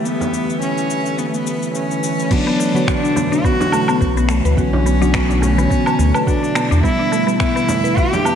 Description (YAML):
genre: organic downtempo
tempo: 106 BPM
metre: 4/4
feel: swing 56% on 16ths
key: B minor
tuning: A4 = 440 Hz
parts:
  - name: warm cello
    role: melody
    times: 0.0-8.4 s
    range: A3 to G4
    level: -21 LUFS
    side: equal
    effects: digital delay, slapback echo
  - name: muted felt-like synth keys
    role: accompaniment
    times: 0.0-8.4 s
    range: D3 to C#5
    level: -22 LUFS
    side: right 1 dB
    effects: chorus, sidechain pumping, digital delay, slapback echo
  - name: airy breathy pad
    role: sustained chords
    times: 0.0-8.4 s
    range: B2 to B4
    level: -24 LUFS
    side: equal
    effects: chorus, sidechain pumping
  - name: wind-like tuned noise texture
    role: texture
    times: 0.0-2.3 s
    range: E5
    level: -36 LUFS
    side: equal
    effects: built-in reverb
  - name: organic electronic drum kit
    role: drums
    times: 0.1-8.4 s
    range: cabasa, crash cymbal, finger snaps, woodblock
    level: -25 LUFS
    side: equal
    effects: none
  - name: frame drum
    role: percussion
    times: 0.2-8.2 s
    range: none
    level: -27 LUFS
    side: right 3 dB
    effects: none
  - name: mallet-like synth pluck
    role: arpeggios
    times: 2.3-8.3 s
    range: A3 to B4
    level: -21 LUFS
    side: left 1 dB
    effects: chorus, digital delay, slapback echo
  - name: electronic kick drum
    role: drums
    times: 2.3-8.1 s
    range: none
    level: -20 LUFS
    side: equal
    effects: none
  - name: round analog bass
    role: bass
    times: 4.0-6.8 s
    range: B1 to E2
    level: -16 LUFS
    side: equal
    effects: tube saturation, sidechain pumping
room: moderate scoring stage reverb, RT60 1.7 s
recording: big arena sound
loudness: -14 LUFS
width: side -8 dB against mid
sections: 0.0-2.3 A section; 2.3-8.4 B section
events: none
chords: 0.0 Em; 2.3 Bmadd9; 6.8 Em